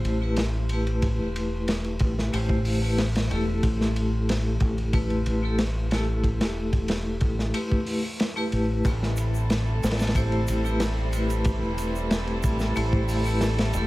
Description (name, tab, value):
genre	trip hop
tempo	92 BPM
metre	4/4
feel	straight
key	A minor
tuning	A4 = 440 Hz
part	vibraphone with hard mallets	accompaniment	0.0-13.9 s	A3 to C5	-28 LUFS	left 1 dB	tremolo, analog delay
part	deep dub fingered electric bass	bass	0.0-13.9 s	E1 to A1	-26 LUFS	equal	none
part	crunchy breakbeat drum kit	drums	0.0-13.9 s	hi-hat, kick drum, ride cymbal, snare drum	-28 LUFS	equal	none
part	rich chamber violin section	sustained chords	8.8-13.9 s	G3 to A4	-32 LUFS	right 1 dB	none
part	egg shaker	percussion	8.8-13.9 s	none	-44 LUFS	right 4 dB	none
room	studio reverb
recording	echo-heavy mix, vinyl crackle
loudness	-22 LUFS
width	side -18 dB against mid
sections	0.0-13.9 A section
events	none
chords	0.0 Am7; 3.6 Em/A; 8.8 Am7